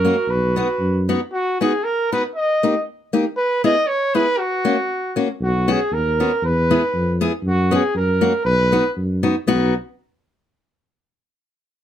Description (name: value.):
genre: alpine folk, alpine dance band.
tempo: 118 BPM.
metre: 2/4.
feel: swing 54% on 8ths, rubato.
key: B major.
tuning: A4 = 441 Hz.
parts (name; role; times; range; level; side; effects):
warm trumpet; melody; 0.0-8.9 s; F#4 to D#5; -19 LUFS; right 1 dB; plate reverb.
warm clarinet; second line; 0.0-1.1 s; F#4; -27 LUFS; right 4 dB; none.
fingerpicked steel-string acoustic guitar; accompaniment; 0.0-9.7 s; A#3 to G#4; -19 LUFS; left 2 dB; none.
mellow tuba; bass; 0.0-1.1, 5.4-9.7 s; B1 to F#2; -20 LUFS; equal; none.
room: light reverb.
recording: none.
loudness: -17 LUFS.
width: side -10 dB against mid.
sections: 0.0-1.3 A section; 1.3-9.5 A section; 9.5-10.5 B section.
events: none.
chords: 0.3 B; 2.4 D#; 3.4 E; 4.4 F#; 5.4 Bsus2; 6.4 E; 7.4 F#sus4; 7.9 F#; 8.4 B.